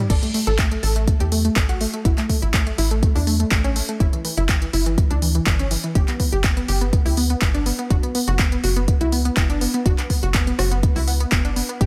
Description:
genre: progressive house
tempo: 123 BPM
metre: 4/4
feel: straight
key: B minor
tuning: A4 = 440 Hz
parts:
  - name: unison pluck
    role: arpeggios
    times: 0.0-11.9 s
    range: E3 to A4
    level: -27 LUFS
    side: equal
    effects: sidechain pumping, digital delay
  - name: tight sequencer bass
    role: bass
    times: 0.1-11.9 s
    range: F#1 to E2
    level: -24 LUFS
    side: equal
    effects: tube saturation, sidechain pumping
  - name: deep house drum kit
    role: drums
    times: 0.1-11.9 s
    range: crash cymbal, handclaps, hi-hat, rim click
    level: -28 LUFS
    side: equal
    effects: sidechain pumping on hats, studio reverb, sidechain pumping on toms, sidechain pumping on cymbals
  - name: electronic kick drum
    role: drums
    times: 0.1-11.9 s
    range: none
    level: -22 LUFS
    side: equal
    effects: studio reverb
room: little or no reverb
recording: none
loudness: -20 LUFS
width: mono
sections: 0.0-11.9 A section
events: none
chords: 0.1 A5; 4.0 Em/G; 7.9 Bsus2/F#

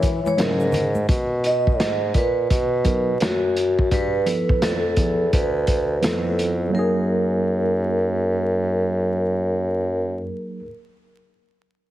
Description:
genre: hip hop, jazz-hop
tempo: 85 BPM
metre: 4/4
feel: swing 64% on 16ths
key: F# major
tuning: A4 = 440 Hz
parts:
  - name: vibraphone with soft mallets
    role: melody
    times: 0.0-10.6 s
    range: F#4 to D#5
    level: -24 LUFS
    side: equal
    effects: none
  - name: breathy trombone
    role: second line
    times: 0.0-0.9 s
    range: C#3 to E3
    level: -28 LUFS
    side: left 3 dB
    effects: none
  - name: mellow bassoon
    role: bass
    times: 0.0-10.3 s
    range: D2 to B2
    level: -23 LUFS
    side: equal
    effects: none
  - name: vintage drum kit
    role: drums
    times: 0.0-6.6 s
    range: hi-hat, kick drum, snare drum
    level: -22 LUFS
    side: equal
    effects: none
  - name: tube shaker and congas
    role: percussion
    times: 0.0-1.1 s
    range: none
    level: -30 LUFS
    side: right 2 dB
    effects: none
  - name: mellow tine electric piano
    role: accompaniment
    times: 0.4-10.7 s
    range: F3 to A#4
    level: -26 LUFS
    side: right 2 dB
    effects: medium stereo tremolo
room: light reverb, studio ambience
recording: heavily compressed radio sound, multiband compression, vinyl crackle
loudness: -18 LUFS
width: side -14 dB against mid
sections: 0.0-6.7 A section; 6.7-9.6 B section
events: none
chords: 0.0 F#7; 1.1 Bmaj7; 3.9 G13; 6.7 F#69

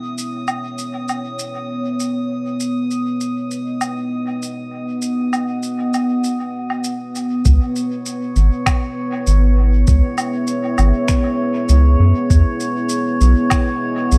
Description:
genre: ambient dub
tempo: 99 BPM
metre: 4/4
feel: straight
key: C# minor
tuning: A4 = 440 Hz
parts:
  - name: deep dark ambient pad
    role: sustained chords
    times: 0.0-14.2 s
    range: B3 to F#5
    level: -23 LUFS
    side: equal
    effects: chorus, built-in reverb
  - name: drifting glass-harmonics texture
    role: texture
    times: 0.0-14.2 s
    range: C#5 to D#6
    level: -32 LUFS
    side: equal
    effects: chorus, built-in reverb
  - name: shaker, woodblock and finger snaps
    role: drums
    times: 0.2-14.2 s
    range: none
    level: -27 LUFS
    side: equal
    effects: dub echo
  - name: round analog bass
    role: bass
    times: 7.5-14.2 s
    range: G#1 to F#2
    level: -14 LUFS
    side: equal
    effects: none
  - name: electronic kick drum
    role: drums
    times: 7.5-13.6 s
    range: none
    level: -19 LUFS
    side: equal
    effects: none
room: light reverb, small room ambience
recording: echo-heavy mix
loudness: -18 LUFS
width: mono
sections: 0.0-7.5 A section; 7.5-14.2 B section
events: none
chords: 0.0 Emaj9; 7.5 C#m7; 12.3 Emaj9

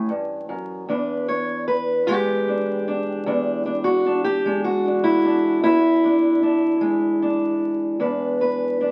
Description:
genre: acoustic country blues, solo or duo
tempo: 50 BPM (dotted quarters)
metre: 12/8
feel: straight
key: unclear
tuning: A4 = 440 Hz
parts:
  - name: fingerpicked steel-string acoustic guitar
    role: solo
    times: 0.0-8.9 s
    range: E2 to C#5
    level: -21 LUFS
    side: equal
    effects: none
room: moderate club reverb, RT60 0.5 s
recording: very old 78 rpm record, vinyl crackle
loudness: -21 LUFS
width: mono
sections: 0.0-8.9 A section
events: none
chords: 0.0 A7 (rootless); 0.9 E7

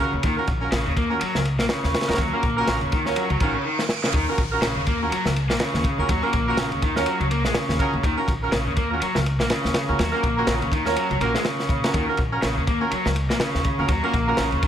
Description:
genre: breakbeat, breaks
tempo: 123 BPM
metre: 4/4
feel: swing 58% on 16ths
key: Eb minor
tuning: A4 = 440 Hz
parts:
  - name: raw garage guitar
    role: riff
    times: 0.0-14.7 s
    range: Db3 to Db4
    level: -25 LUFS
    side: equal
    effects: overdrive, ping-pong delay
  - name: warm horn section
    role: stabs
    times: 0.0-14.5 s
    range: Db4 to Bb4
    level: -27 LUFS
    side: right 2 dB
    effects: ping-pong delay
  - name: upright bass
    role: bass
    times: 0.1-14.7 s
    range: Bb1 to Bb2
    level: -27 LUFS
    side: equal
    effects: none
  - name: crunchy breakbeat drum kit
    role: drums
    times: 0.2-14.7 s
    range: kick drum, ride cymbal, snare drum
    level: -25 LUFS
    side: equal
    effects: none
  - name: reverse cymbal and downlifter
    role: sound effects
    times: 3.4-8.0 s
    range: none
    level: -35 LUFS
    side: right 3 dB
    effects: none
room: small room reverb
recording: none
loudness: -20 LUFS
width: side -9 dB against mid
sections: 0.0-4.1 A section; 4.1-14.7 B section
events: reverse cymbal 3.4-4.1; drum fill 3.8-4.1; drop 4.1-14.7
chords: 0.0 Ebm7

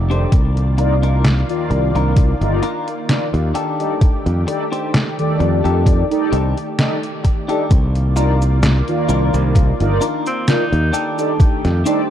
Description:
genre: vaporwave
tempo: 65 BPM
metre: 4/4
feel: swing 54% on 16ths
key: C dorian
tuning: A4 = 440 Hz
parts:
  - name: lush unison pad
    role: sustained chords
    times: 0.0-12.1 s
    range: Eb3 to D5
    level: -26 LUFS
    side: equal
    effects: chorus
  - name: modern bright fingered electric bass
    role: bass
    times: 0.0-11.8 s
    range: F1 to F2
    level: -16 LUFS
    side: equal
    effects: none
  - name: mellow synth brass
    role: accompaniment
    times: 0.1-12.0 s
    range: Eb3 to D5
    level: -21 LUFS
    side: equal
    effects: lush chorus, tape echo
  - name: clean electric guitar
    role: riff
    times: 0.1-12.1 s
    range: D4 to C5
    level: -25 LUFS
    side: left 3 dB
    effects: wide subtle chorus, tape echo
  - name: detuned 8-bit digital drum machine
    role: drums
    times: 0.1-12.1 s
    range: cabasa, hi-hat, snare drum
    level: -20 LUFS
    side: equal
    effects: small room reverb
  - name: electronic kick drum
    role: drums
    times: 0.3-11.6 s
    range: none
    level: -13 LUFS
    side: equal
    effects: small room reverb
  - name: edgy alto saxophone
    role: melody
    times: 10.3-11.0 s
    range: C4 to Eb4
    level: -24 LUFS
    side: right 1 dB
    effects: tape echo
room: digital ambience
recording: dark, warm production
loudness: -14 LUFS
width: side -10 dB against mid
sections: 0.0-7.7 A section; 7.7-12.1 B section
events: band accent 6.8-7.2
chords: 0.3 Cm11; 3.6 F13; 7.7 Cm11; 10.9 F13

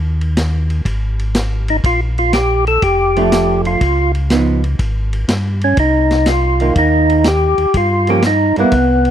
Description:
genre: soul jazz organ trio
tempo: 122 BPM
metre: 4/4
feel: swing 68% on 8ths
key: C minor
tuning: A4 = 440 Hz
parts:
  - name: mellow tonewheel organ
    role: bass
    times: 0.0-9.1 s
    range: F1 to G2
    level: -17 LUFS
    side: equal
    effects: slow rotary speaker
  - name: vintage drum kit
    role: drums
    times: 0.2-9.1 s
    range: hi-hat, kick drum, ride cymbal, snare drum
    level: -21 LUFS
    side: equal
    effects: none
  - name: percussive tonewheel organ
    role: melody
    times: 1.7-9.1 s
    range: B3 to A4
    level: -14 LUFS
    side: equal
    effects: slow rotary speaker, overdrive, chorus vibrato
  - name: archtop guitar, miked and amplified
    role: accompaniment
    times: 3.2-8.7 s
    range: Eb3 to E4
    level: -17 LUFS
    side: right 4 dB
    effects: none
room: studio reverb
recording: dry, close 1970s-style studio recording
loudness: -12 LUFS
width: side -10 dB against mid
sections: 0.0-9.1 A section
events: none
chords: 0.0 N.C.; 0.9 Ab5; 1.8 Bbmaj7; 3.8 Db9; 5.8 Cm7; 7.7 Gm7b5

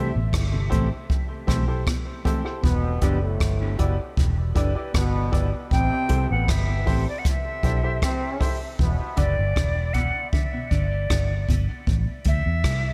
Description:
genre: dub reggae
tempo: 78 BPM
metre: 4/4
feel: straight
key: E minor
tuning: A4 = 439 Hz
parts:
  - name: mellow electric guitar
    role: accompaniment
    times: 0.0-3.2, 9.2-12.4 s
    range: E3 to G4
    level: -37 LUFS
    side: equal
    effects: high-pass filter, dub echo
  - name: mellow electric guitar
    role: arpeggios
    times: 0.0-2.8, 8.8-12.4 s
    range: G2 to E3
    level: -37 LUFS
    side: equal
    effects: spring reverb, dub echo
  - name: clear upright piano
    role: stabs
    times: 0.0-12.4 s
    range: E4 to D5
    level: -36 LUFS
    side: equal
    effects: high-pass filter, dub echo
  - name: vintage muted fingered electric bass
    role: bass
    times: 0.0-12.9 s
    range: E1 to E2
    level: -26 LUFS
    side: equal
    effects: none
  - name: jazz brush drum kit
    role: drums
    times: 0.3-12.8 s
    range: hi-hat, kick drum, rim click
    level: -27 LUFS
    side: equal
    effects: none
  - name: muted trombone section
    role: second line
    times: 2.6-9.3 s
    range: A2 to D4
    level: -34 LUFS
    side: equal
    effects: high-pass filter, dub echo
  - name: silver concert flute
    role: melody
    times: 5.7-12.9 s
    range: D5 to G5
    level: -32 LUFS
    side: equal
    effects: dub echo
room: light reverb, small room reverb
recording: echo-heavy mix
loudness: -23 LUFS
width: mono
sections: 0.0-8.8 A section; 8.8-12.9 B section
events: break 0.0-5.7; filter sweep 5.7-12.9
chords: 0.0 Am7; 2.6 Em7; 5.7 Am7; 8.8 Em7; 11.9 Am7

